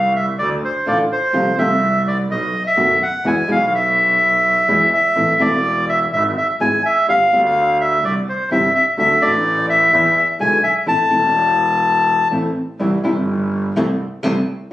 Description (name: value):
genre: tango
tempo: 126 BPM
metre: 4/4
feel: rubato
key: A harmonic minor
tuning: A4 = 441 Hz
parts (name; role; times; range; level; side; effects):
- bandoneon; melody; 0.0-12.3 s; C5 to A5; -14 LUFS; left 1 dB; none
- bright double bass; bass; 0.0-14.4 s; E1 to E2; -22 LUFS; right 1 dB; none
- flamenco guitar; accompaniment; 0.9-14.3 s; B2 to F#4; -20 LUFS; left 1 dB; none
room: moderate studio reverb, RT60 0.6 s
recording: recorded on a phone in the room, studio reverb, compression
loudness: -14 LUFS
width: side -14 dB against mid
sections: 0.0-12.8 A section; 12.8-14.7 B section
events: none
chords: 0.4 Dm; 1.3 F/C; 2.3 B7; 3.2 E; 5.2 Am; 6.1 E/G#; 7.1 G7; 8.0 C; 9.0 D; 9.9 E7; 10.9 Am; 12.8 C; 13.8 Am/C